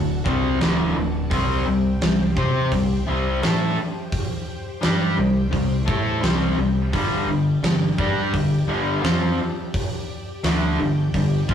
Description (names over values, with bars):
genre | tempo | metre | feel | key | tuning
classic rock | 86 BPM | 4/4 | straight | unclear | A4 = 440 Hz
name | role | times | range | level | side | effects
string machine, violins | sustained chords | 0.0-11.5 s | D4 to G5 | -34 LUFS | left 2 dB | ensemble chorus
distorted electric guitar | riff | 0.0-11.5 s | D2 to C5 | -26 LUFS | right 3 dB | distortion
overdriven electric guitar | riff | 0.0-11.5 s | D2 to C5 | -23 LUFS | left 3 dB | spring reverb
growling fingered electric bass | bass | 0.0-11.5 s | D1 to C3 | -26 LUFS | equal | overdrive
huge arena drum kit | drums | 0.3-11.5 s | hi-hat, kick drum, snare drum | -24 LUFS | right 1 dB | none
room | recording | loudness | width
wet studio reverb, RT60 0.6 s | rough rehearsal-room recording, warm saturation, cassette tape | -19 LUFS | side -8 dB against mid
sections
0.0-11.5 A section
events
none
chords
0.0 D; 1.3 C5; 6.9 G5